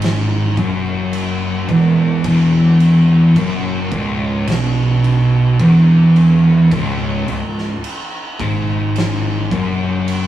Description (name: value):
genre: stoner and doom metal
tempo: 54 BPM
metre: 4/4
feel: straight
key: C# minor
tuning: A4 = 440 Hz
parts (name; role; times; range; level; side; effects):
- thick fuzz guitar; riff; 0.0-10.3 s; C#2 to B2; -15 LUFS; left 2 dB; distortion
- thick fuzz guitar; riff; 0.0-10.3 s; C#2 to B2; -17 LUFS; right 4 dB; distortion
- growling fingered electric bass; bass; 0.0-10.3 s; C#1 to B1; -26 LUFS; right 1 dB; overdrive
- oversized low-tuned drum kit; drums; 0.0-10.3 s; crash cymbal, kick drum, snare drum; -25 LUFS; right 1 dB; none
room: wet small room reverb, RT60 0.6 s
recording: rough rehearsal-room recording, small room ambience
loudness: -12 LUFS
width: side -12 dB against mid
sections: 0.0-10.3 A section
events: none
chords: 0.0 C#m